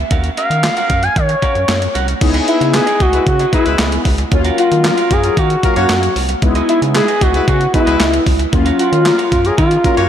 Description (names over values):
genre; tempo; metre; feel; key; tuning
early-eighties boogie funk; 114 BPM; 4/4; straight; unclear; A4 = 440 Hz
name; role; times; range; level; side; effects
electric guitar at the edge of break-up; riff; 0.0-10.1 s; B3 to F#5; -24 LUFS; right 6 dB; wide subtle chorus, slapback echo
rubbery square bass; bass; 0.0-10.1 s; B#1 to D#3; -18 LUFS; equal; none
crisp 8-bit digital drum machine; drums; 0.1-10.1 s; crash cymbal, handclaps, hi-hat, kick drum, snare drum; -17 LUFS; equal; overdrive
expressive synth lead; melody; 0.4-10.1 s; E4 to G#5; -16 LUFS; equal; chorus, slapback echo
mellow synth brass; accompaniment; 2.2-10.1 s; F#3 to E#5; -20 LUFS; left 2 dB; chorus, phaser, slapback echo
warm horn section; second line; 2.7-10.1 s; F#3 to C#5; -23 LUFS; left 4 dB; slapback echo
room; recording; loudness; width
moderate lush hall reverb, RT60 2.6 s; big arena sound; -11 LUFS; side -9 dB against mid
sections
0.0-2.2 A section; 2.2-10.1 B section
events
none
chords
0.1 D#m9; 2.2 C#m9; 4.3 D#m9; 6.4 C#m9; 8.5 D#m9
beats
| 0.11 0.63 1.16 1.69 | 2.21 2.74 3.27 3.79 | 4.32 4.84 5.37 5.90 | 6.42 6.95 7.47 8.00 | 8.53 9.05 9.58